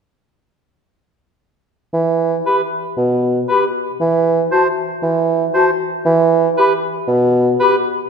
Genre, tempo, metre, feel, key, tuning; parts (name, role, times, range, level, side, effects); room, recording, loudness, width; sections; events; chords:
cinematic, playful, whimsical film cue; 116 BPM; 4/4; straight; E minor; A4 = 441 Hz
mellow bassoon; accompaniment; 1.9-7.5 s; B2 to E3; -16 LUFS; right 2 dB
dark clarinet; second line; 2.5-7.8 s; F#4 to G4; -21 LUFS; left 3 dB
large flute ensemble; second line; 2.5-7.7 s; A5 to B5; -20 LUFS; left 4 dB
warm cor anglais; second line; 2.5-7.8 s; B4 to C5; -22 LUFS; right 2 dB
wet scoring stage reverb, RT60 1.8 s; -14 LUFS; side -6 dB against mid
1.9-8.1 A section
1.9 E5; 4.0 N.C.; 6.1 E5